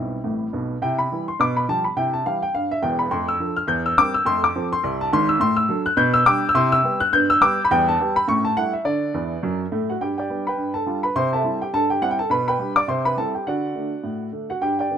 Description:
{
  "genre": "jazz, stride piano",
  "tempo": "209 BPM",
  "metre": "4/4",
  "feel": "swing 58% on 8ths",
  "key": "C major, G major from 5.4 s",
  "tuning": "A4 = 440 Hz",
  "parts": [
    { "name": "warm upright piano", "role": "solo", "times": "0.0-15.0 s", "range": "E1 to G6", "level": "-19 LUFS", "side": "equal", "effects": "none" }
  ],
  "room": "light reverb",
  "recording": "rough home demo mix",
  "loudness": "-19 LUFS",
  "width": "side -8 dB against mid",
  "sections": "0.8-10.0 A section; 10.0-15.0 B section",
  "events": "upright piano fill 0.0-0.8, 9.1-10.0",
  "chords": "0.0 C; 1.4 G7/B; 2.0 C; 3.1 F6; 3.7 C7/E; 4.3 F; 5.4 D/A; 6.0 G/B; 6.6 Cmaj7; 7.1 G; 7.7 Em; 8.3 A7; 8.8 Dsus2; 9.4 D; 10.0 G; 10.6 G7; 11.1 C; 12.3 G/B; 12.9 C; 13.5 D"
}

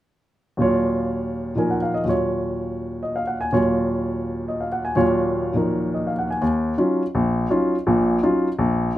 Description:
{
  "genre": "jazz",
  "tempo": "165 BPM",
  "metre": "4/4",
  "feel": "swing 64% on 8ths",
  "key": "Eb minor",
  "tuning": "A4 = 441 Hz",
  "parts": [
    { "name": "warm grand piano", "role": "solo", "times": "0.6-8.9 s", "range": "Bb1 to Ab5", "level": "-19 LUFS", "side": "equal", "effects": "none" }
  ],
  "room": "moderate club reverb, RT60 0.6 s",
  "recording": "none",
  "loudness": "-19 LUFS",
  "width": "side -14 dB against mid",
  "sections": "0.6-6.4 A section; 6.4-9.0 B section",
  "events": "none",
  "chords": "0.6 Ebm9"
}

